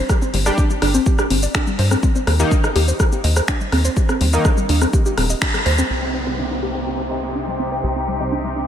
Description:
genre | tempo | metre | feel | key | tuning
melodic techno | 124 BPM | 4/4 | straight | C minor | A4 = 442 Hz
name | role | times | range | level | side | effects
warbly dusty pluck | arpeggios | 0.0-8.6 s | G3 to Eb5 | -23 LUFS | left 1 dB | chorus, sidechain pumping, diffuse ambient delay
tight sequencer bass | bass | 0.0-8.7 s | Eb1 to G2 | -20 LUFS | equal | tube saturation, sidechain pumping
electronic kick drum | drums | 0.1-5.5 s | none | -18 LUFS | equal | none
punchy analog drum machine | drums | 0.1-5.9 s | finger snaps, hi-hat, rim click, shaker | -23 LUFS | left 1 dB | none
sync-sweep polysynth | stabs | 0.5-8.3 s | C3 to G4 | -26 LUFS | left 1 dB | chorus, sidechain pumping, diffuse ambient delay
clear symphonic string section | sustained chords | 5.9-8.7 s | C3 to G4 | -24 LUFS | left 1 dB | sidechain pumping, low-pass filter
downlifter | sound effects | 5.9-8.7 s | none | -28 LUFS | right 3 dB | none
room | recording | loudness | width
moderate church reverb, RT60 3.1 s | dreamy mix soaked in reverb | -16 LUFS | side -9 dB against mid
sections
0.0-5.9 A section; 5.9-8.7 B section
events
band accent 5.4; filter sweep on synth arpeggio sound 5.9-8.7; filter sweep on string section 5.9-8.7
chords
0.0 G5; 2.0 Eb; 5.9 Cm

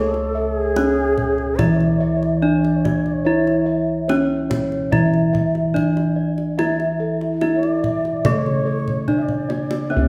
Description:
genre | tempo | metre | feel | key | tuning
Javanese gamelan | 72 BPM | 4/4 | straight | C# pelog | A4 = 437 Hz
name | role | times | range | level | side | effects
gamelan-type bronze metallophone | melody | 0.0-10.1 s | A3 to E4 | -25 LUFS | equal | none
mellow bansuri | second line | 0.0-10.1 s | G#4 to E5+35c | -28 LUFS | equal | none
gamelan-type bossed gongs | arpeggios | 0.0-10.1 s | A4 to E5 | -31 LUFS | equal | none
gamelan-type bronze metallophone | arpeggios | 0.0-10.1 s | A4 to E5 | -30 LUFS | equal | none
gamelan-type bossed gongs | bass | 0.0-10.1 s | C#2 to A4 | -23 LUFS | equal | none
kendang | percussion | 0.1-9.9 s | none | -28 LUFS | equal | none
room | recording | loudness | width
wet recital hall reverb, RT60 1.4 s | heard from further back in the room | -19 LUFS | mono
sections
0.0-10.1 A section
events
drum fill 8.9-9.9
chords
none

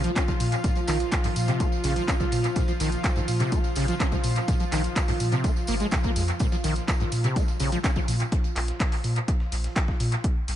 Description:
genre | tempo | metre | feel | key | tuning
acid house | 125 BPM | 4/4 | straight | unclear | A4 = 440 Hz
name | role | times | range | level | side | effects
lush unison pad | sustained chords | 0.0-10.2 s | F3 to F4 | -32 LUFS | equal | chorus, sidechain pumping
acid bass, saw | riff | 0.0-8.0 s | Ab2 to Db4 | -30 LUFS | equal | overdrive, wide subtle chorus, sidechain pumping, tape echo
saturated sub bass | bass | 0.0-10.6 s | Ab1 to Bb2 | -26 LUFS | equal | sidechain pumping
dusty soul sampler-style drum kit | drums | 0.0-10.2 s | hi-hat, snare drum | -44 LUFS | equal | none
punchy analog drum machine | drums | 0.0-10.6 s | handclaps, hi-hat | -32 LUFS | equal | tape echo
tambourine | percussion | 0.0-8.3 s | none | -40 LUFS | right 2 dB | tape echo
electronic kick drum | drums | 0.2-10.3 s | none | -25 LUFS | equal | none
room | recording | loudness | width
light reverb | echo-heavy mix, nothing above 10.5 kHz | -22 LUFS | side -11 dB against mid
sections
0.0-10.6 A section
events
none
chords
0.0 Bb5

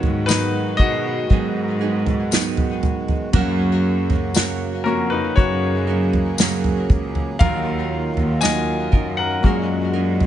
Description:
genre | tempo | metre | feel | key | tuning
pop ballad | 59 BPM | 4/4 | straight | F# major | A4 = 439 Hz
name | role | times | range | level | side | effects
clear baby grand piano | accompaniment | 0.0-10.3 s | F#3 to G#5 | -24 LUFS | left 5 dB | none
pedal harmonium | sustained chords | 0.0-10.3 s | A#2 to G#4 | -28 LUFS | right 2 dB | none
nylon-string guitar | arpeggios | 0.0-10.3 s | G#2 to A#4 | -26 LUFS | right 8 dB | ping-pong delay
warm symphonic cello section | bass | 0.0-10.3 s | C#2 to B2 | -23 LUFS | equal | none
unplugged drum kit | drums | 0.0-10.3 s | kick drum, snare drum, toms | -19 LUFS | equal | none
tambourine | percussion | 0.3-8.7 s | none | -27 LUFS | left 12 dB | none
room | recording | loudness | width
small room ambience | nothing above 10.4 kHz | -17 LUFS | side -11 dB against mid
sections
0.0-10.3 A section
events
grand piano solo 0.0-10.3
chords
0.0 G#m7; 3.3 F#; 7.4 D#madd9; 9.4 F#add9

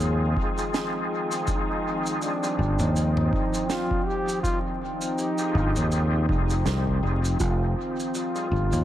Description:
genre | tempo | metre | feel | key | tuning
ambient dub | 81 BPM | 4/4 | swing 57% on 16ths | F minor | A4 = 442 Hz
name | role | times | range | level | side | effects
warm trombone | melody | 0.0-8.8 s | D4 to Ab4 | -30 LUFS | left 1 dB | dub echo
warbly tape-like pad | sustained chords | 0.0-8.8 s | Eb3 to Bb5 | -31 LUFS | right 1 dB | chorus, built-in reverb
bright tonewheel organ | stabs | 0.0-8.5 s | G3 to Ab4 | -32 LUFS | left 1 dB | overdrive, chorus vibrato, fast rotary speaker, dub echo
fingered electric bass | bass | 0.0-8.8 s | F1 to Eb2 | -23 LUFS | equal | none
modern studio drum kit | drums | 0.0-8.8 s | shaker, snare drum, toms | -33 LUFS | right 1 dB | dub echo
electronic kick drum | drums | 0.4-8.7 s | none | -30 LUFS | equal | overdrive
handpan | arpeggios | 7.4-8.8 s | F4 | -34 LUFS | right 5 dB | dub echo
room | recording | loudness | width
moderate spring reverb, RT60 2.4 s | vinyl crackle | -23 LUFS | side -12 dB against mid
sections
0.0-8.8 A section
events
none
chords
0.0 Fm9

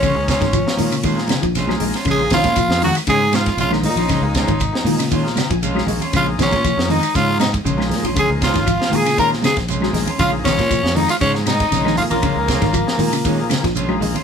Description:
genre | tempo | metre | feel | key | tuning
afrobeat | 118 BPM | 4/4 | straight | Bb minor | A4 = 440 Hz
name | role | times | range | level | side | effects
raspy tenor saxophone | melody | 0.0-13.7 s | Bb3 to Bb4 | -20 LUFS | left 1 dB | none
clear trumpet | second line | 0.0-13.7 s | Bb4 to Bb5 | -27 LUFS | right 4 dB | none
semi-hollow electric guitar | arpeggios | 0.0-14.2 s | C3 to Ab3 | -22 LUFS | left 4 dB | none
electric guitar at the edge of break-up | stabs | 0.0-14.2 s | Ab3 to F4 | -27 LUFS | right 3 dB | none
fingered electric bass | bass | 0.0-14.1 s | Ab1 to Bb2 | -23 LUFS | equal | none
tight funk drum kit | drums | 0.0-14.2 s | hi-hat, kick drum, ride cymbal, snare drum | -23 LUFS | right 1 dB | none
claves | percussion | 0.0-14.0 s | none | -36 LUFS | left 6 dB | none
shekere | percussion | 0.0-14.1 s | none | -28 LUFS | right 5 dB | none
overdriven combo organ | accompaniment | 0.1-14.2 s | F3 to Bb5 | -28 LUFS | left 5 dB | none
congas | percussion | 0.4-14.2 s | none | -26 LUFS | right 5 dB | none
room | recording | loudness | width
light reverb | band playing live in one room | -15 LUFS | side -7 dB against mid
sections
0.0-14.2 A section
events
transistor combo organ fill 5.1-6.1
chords
0.0 Bbm7

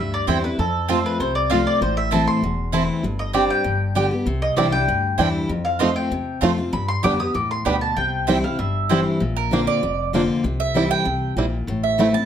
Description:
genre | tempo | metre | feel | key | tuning
bluegrass | 195 BPM | 4/4 | straight | C major | A4 = 439 Hz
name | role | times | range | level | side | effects
mandolin | melody | 0.0-9.1 s | A4 to Eb6 | -24 LUFS | equal | none
picked steel-string acoustic guitar | accompaniment | 0.0-12.3 s | E2 to G4 | -22 LUFS | left 2 dB | none
upright bass | bass | 0.0-12.1 s | E1 to G2 | -27 LUFS | equal | none
mandolin | stabs | 0.3-12.3 s | B3 to A5 | -24 LUFS | right 6 dB | none
bluegrass banjo | arpeggios | 4.6-12.1 s | G3 to F4 | -24 LUFS | right 5 dB | slapback echo
room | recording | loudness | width
moderate studio reverb, RT60 0.8 s | none | -18 LUFS | side -9 dB against mid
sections
0.0-9.2 A section; 9.2-12.3 B section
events
mandolin solo 9.2-12.3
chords
0.0 C; 0.6 F; 1.8 Am; 3.0 Gsus4; 3.7 G; 4.3 Cadd9; 5.5 F; 6.7 G; 8.0 C; 9.2 Bbadd9; 10.4 C; 11.7 Am

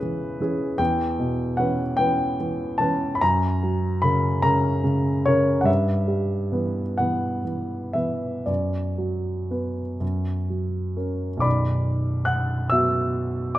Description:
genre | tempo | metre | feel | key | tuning
classical, romantic nocturne for solo piano | 38-51 BPM (dotted quarters) | 6/8 | rubato | B minor | A4 = 440 Hz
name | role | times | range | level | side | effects
warm grand piano | solo | 0.0-13.6 s | B0 to F#6 | -21 LUFS | equal | none
room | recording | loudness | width
moderate recital hall reverb, RT60 1.4 s | close, detailed microphones | -21 LUFS | side -14 dB against mid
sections
0.0-11.5 A section; 11.5-13.6 B section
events
none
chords
0.0 C#m/E; 0.8 C#m7b5/E; 3.2 F#; 5.7 Em/G; 8.5 Bm/F#; 10.0 F#; 11.5 Bm

